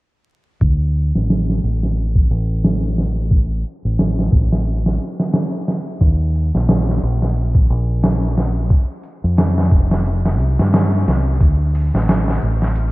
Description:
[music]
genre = trip hop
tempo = 89 BPM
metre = 4/4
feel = swing 57% on 16ths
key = unclear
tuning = A4 = 441 Hz
[part]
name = deep dub fingered electric bass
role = bass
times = 0.6-12.9 s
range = F1 to G2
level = -17 LUFS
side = equal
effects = tube saturation
[part]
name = trip hop sampler-style drum kit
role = drums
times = 0.6-12.9 s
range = hi-hat, kick drum, snare drum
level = -17 LUFS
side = equal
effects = gated reverb
[sound]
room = light reverb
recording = bright 1980s-style digital production, vinyl crackle, low-pass filter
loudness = -15 LUFS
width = side -20 dB against mid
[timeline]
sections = 0.6-12.9 A section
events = filter sweep 0.6-12.9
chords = none

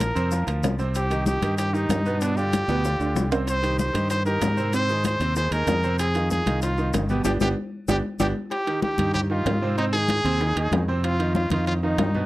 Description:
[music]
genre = latin, salsa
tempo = 190 BPM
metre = 4/4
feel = straight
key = C minor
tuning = A4 = 440 Hz
[part]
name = clear trumpet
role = melody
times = 0.0-12.3 s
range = D4 to C5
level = -26 LUFS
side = equal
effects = none
[part]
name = bright baby grand piano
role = accompaniment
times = 0.0-12.3 s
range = B2 to C5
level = -28 LUFS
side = right 3 dB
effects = none
[part]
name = fingered electric bass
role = bass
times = 0.0-12.3 s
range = G1 to Ab2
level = -25 LUFS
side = equal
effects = none
[part]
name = bongos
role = percussion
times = 0.0-12.1 s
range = none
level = -34 LUFS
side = left 5 dB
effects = none
[part]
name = congas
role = percussion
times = 0.0-12.3 s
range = none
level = -30 LUFS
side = left 2 dB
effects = none
[part]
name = maracas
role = percussion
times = 0.0-8.3 s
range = none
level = -40 LUFS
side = left 5 dB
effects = none
[part]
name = timbales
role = percussion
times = 0.0-12.1 s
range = none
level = -30 LUFS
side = right 4 dB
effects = none
[sound]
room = light reverb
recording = dry, close 1970s-style studio recording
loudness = -21 LUFS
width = side -17 dB against mid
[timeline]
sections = 0.0-8.5 A section; 8.5-12.3 A section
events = drum fill 2.7-3.5, 8.0-8.5; band accent 7.3-8.5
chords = 0.0 Bbsus2; 1.0 Cm; 2.2 G7; 3.5 Cm; 4.7 Ab; 6.0 Fm7; 7.3 G; 8.5 Cm; 9.8 Ab; 11.0 F5

